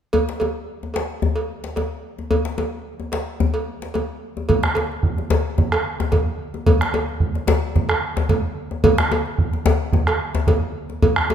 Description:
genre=west african traditional, West African drum ensemble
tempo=110 BPM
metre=4/4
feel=straight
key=none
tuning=none
part: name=cowbell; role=percussion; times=0.1-11.3 s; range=none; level=-24 LUFS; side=right 3 dB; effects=none
part: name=djembe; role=percussion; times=0.1-11.3 s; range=none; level=-23 LUFS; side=left 4 dB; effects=none
part: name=bombo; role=percussion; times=4.5-11.3 s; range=none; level=-20 LUFS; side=right 2 dB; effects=none
room=moderate recital hall reverb, RT60 1.6 s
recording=minimal, uncompressed stereo recording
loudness=-19 LUFS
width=side -9 dB against mid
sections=0.1-4.5 A section; 4.5-11.3 B section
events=none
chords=none

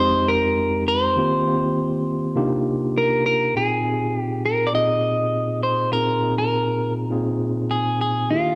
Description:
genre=soul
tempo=101 BPM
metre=4/4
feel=straight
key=unclear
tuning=A4 = 440 Hz
part: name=clean electric guitar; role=melody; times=0.0-8.6 s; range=F4 to Eb5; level=-23 LUFS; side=equal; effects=spring reverb
part: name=mellow tine electric piano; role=accompaniment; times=0.0-8.6 s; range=F2 to Ab4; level=-25 LUFS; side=equal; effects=none
room=digital ambience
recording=dry, close 1970s-style studio recording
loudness=-21 LUFS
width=mono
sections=0.0-3.5 A section; 3.5-8.6 B section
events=none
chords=0.0 Fm9; 1.2 Eb69; 2.4 Cm11; 3.5 Bb7sus4

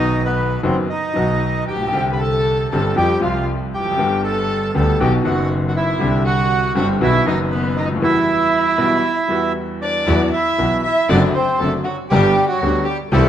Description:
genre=tango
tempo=118 BPM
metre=4/4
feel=rubato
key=E minor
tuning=A4 = 440 Hz
part: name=bandoneon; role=melody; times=0.0-13.3 s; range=F#3 to B5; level=-20 LUFS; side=right 3 dB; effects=none
part: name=warm violin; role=second line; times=0.0-13.3 s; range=B3 to E5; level=-24 LUFS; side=left 4 dB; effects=none
part: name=bright upright piano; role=accompaniment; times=0.0-13.3 s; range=F#1 to G4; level=-20 LUFS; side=left 1 dB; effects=none
part: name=clear double bass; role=bass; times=0.0-13.3 s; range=F1 to F2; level=-22 LUFS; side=right 1 dB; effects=none
part: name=clear studio string section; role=stabs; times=10.1-13.3 s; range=F#3 to E4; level=-28 LUFS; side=right 1 dB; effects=none
room=moderate concert hall reverb, RT60 1.9 s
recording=minimal, uncompressed stereo recording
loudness=-15 LUFS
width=side -10 dB against mid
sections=0.0-10.1 A section; 10.1-13.3 B section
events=none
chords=0.0 B; 1.9 Csus2; 3.0 Fsus2; 4.0 G; 5.0 B; 6.0 Csus2; 7.0 B; 8.0 Emadd9; 10.1 Esus2; 11.1 D7/F#; 12.1 G

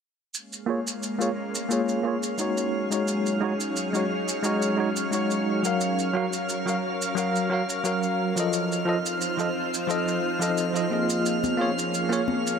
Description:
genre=sunset chillout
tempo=88 BPM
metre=4/4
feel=swing 54% on 16ths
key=Bb minor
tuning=A4 = 440 Hz
part: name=soft string machine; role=sustained chords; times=0.6-12.6 s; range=F3 to F5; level=-29 LUFS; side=equal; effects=ensemble chorus
part: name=shaker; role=drums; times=0.3-12.6 s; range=none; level=-32 LUFS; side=right 3 dB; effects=none
part: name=drifting glass-harmonics texture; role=texture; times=0.8-12.6 s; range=F5 to F6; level=-32 LUFS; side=equal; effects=chorus, built-in reverb
part: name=bell-like tine electric piano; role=accompaniment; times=0.7-12.2 s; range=F3 to F5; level=-26 LUFS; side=moving between left 2 dB and right 4 dB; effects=medium stereo tremolo, auto-pan, low-pass filter, tape echo
part: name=congas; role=percussion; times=11.4-12.4 s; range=none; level=-30 LUFS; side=left 4 dB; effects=none
room=moderate lush hall reverb, RT60 2.5 s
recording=none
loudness=-23 LUFS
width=side -6 dB against mid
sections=0.3-12.6 A section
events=filter sweep on tine electric piano 0.3-12.6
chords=0.3 Bbm7; 2.7 Ab7sus4; 5.8 Gbmaj7; 8.5 F7; 11.3 Bbm7

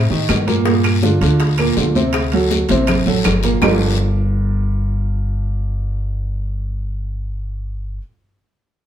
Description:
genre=Afro-Cuban jazz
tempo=162 BPM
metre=4/4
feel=straight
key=G minor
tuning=A4 = 441 Hz
part: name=warm grand piano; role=accompaniment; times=0.0-8.0 s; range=Bb2 to C5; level=-18 LUFS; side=right 2 dB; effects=none
part: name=upright bass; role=bass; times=0.0-8.0 s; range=G1 to A2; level=-19 LUFS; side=equal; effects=none
part: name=congas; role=percussion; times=0.1-3.7 s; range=none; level=-22 LUFS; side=equal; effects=none
part: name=bongos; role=percussion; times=0.3-3.7 s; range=none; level=-26 LUFS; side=left 4 dB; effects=none
part: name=claves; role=percussion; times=0.3-3.7 s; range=none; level=-26 LUFS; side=right 2 dB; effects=none
part: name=guiro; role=percussion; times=0.3-3.7 s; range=none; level=-27 LUFS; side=left 6 dB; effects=none
part: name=timbales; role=percussion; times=0.3-3.7 s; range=none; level=-26 LUFS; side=right 4 dB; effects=none
room=wet studio reverb, RT60 0.7 s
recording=band playing live in one room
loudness=-15 LUFS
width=side -10 dB against mid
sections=0.0-3.6 A section; 3.6-6.6 B section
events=drum fill 2.7-3.6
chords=0.0 A7(b5, no3); 0.7 Gm7; 2.1 D7; 3.6 Gm9

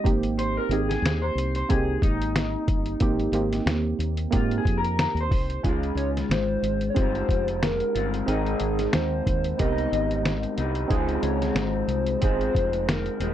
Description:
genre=indie pop, bedroom pop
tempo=91 BPM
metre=4/4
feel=swing 55% on 16ths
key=Ab major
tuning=A4 = 440 Hz
part: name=electric guitar through a small old amp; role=accompaniment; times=0.0-13.3 s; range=Ab2 to C5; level=-29 LUFS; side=left 4 dB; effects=lush chorus, warbly pitch drift, plate reverb
part: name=warm analog keys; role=accompaniment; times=0.0-13.3 s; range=Bb3 to G5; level=-29 LUFS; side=right 5 dB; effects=chorus, cassette tape, plate reverb
part: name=fingered electric bass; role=bass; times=0.0-13.3 s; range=Eb1 to Ab2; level=-28 LUFS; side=equal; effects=none
part: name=lo-fi sampler-style drum kit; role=drums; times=0.1-13.3 s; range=hi-hat, kick drum, snare drum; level=-26 LUFS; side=equal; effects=none
part: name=warbly nostalgic lead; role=melody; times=6.0-13.3 s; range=Ab4 to Eb5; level=-28 LUFS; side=equal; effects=analog chorus, tape echo, plate reverb
room=light reverb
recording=dark, warm production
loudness=-22 LUFS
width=side -11 dB against mid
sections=0.0-5.6 A section; 5.6-13.3 B section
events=clean electric guitar solo 0.0-5.6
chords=0.1 Abmaj7; 5.6 Dbmaj7; 8.3 Abmaj7; 10.9 Dbmaj7

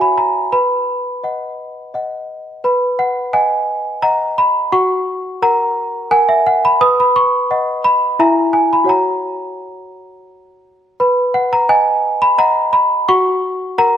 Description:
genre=classical, lullaby for celesta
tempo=86 BPM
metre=3/4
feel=straight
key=B major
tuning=A4 = 441 Hz
part: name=worn celesta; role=solo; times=0.0-14.0 s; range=E4 to D#6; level=-13 LUFS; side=equal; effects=none
room=moderate scoring stage reverb, RT60 1.7 s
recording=none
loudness=-13 LUFS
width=side -9 dB against mid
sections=0.0-2.6 A section; 2.6-14.0 A section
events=none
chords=0.0 F#7; 0.5 B; 4.7 F#; 6.8 B; 8.2 E; 8.9 F#; 11.0 B; 13.1 F#

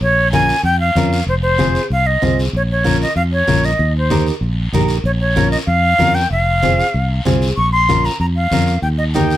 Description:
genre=latin, cumbia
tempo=191 BPM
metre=4/4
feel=straight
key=Bb dorian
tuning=A4 = 439 Hz
part: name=jazz flute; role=melody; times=0.0-9.4 s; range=C5 to Db6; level=-16 LUFS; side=equal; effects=none
part: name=fingered electric bass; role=bass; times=0.0-9.3 s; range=F1 to F2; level=-17 LUFS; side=equal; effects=none
part: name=congas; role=percussion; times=0.0-9.3 s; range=none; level=-21 LUFS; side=left 4 dB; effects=none
part: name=guiro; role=percussion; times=0.0-9.4 s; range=none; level=-29 LUFS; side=left 2 dB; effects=none
part: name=nylon-string guitar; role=accompaniment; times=0.3-9.4 s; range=C4 to Bb4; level=-20 LUFS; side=right 3 dB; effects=none
room=light reverb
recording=close, detailed microphones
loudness=-13 LUFS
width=side -13 dB against mid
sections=0.0-9.4 A section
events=none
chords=0.0 Bbm; 1.3 Fm; 2.5 Bbm; 3.8 Eb; 5.1 Bbm; 6.3 Fm; 7.6 Bbm; 8.8 Eb

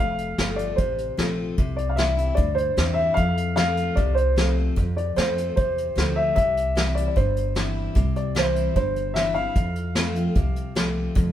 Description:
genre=honky-tonk and classic country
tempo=150 BPM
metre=4/4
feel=straight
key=F major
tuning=A4 = 439 Hz
part: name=dark upright piano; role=melody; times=0.0-10.7 s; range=C5 to F5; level=-25 LUFS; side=left 1 dB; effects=none
part: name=picked steel-string acoustic guitar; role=accompaniment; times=0.0-11.3 s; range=F2 to F4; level=-28 LUFS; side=left 1 dB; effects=none
part: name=upright bass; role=bass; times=0.0-11.3 s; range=F1 to F2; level=-26 LUFS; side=equal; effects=none
part: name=vintage brush drum kit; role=drums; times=0.2-11.3 s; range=hi-hat, kick drum, snare drum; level=-25 LUFS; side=equal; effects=none
room=moderate stone room reverb, RT60 1.4 s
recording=band playing live in one room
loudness=-20 LUFS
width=side -11 dB against mid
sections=0.0-11.2 A section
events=none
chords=0.0 F; 1.6 C; 3.2 F; 6.4 C; 9.6 F

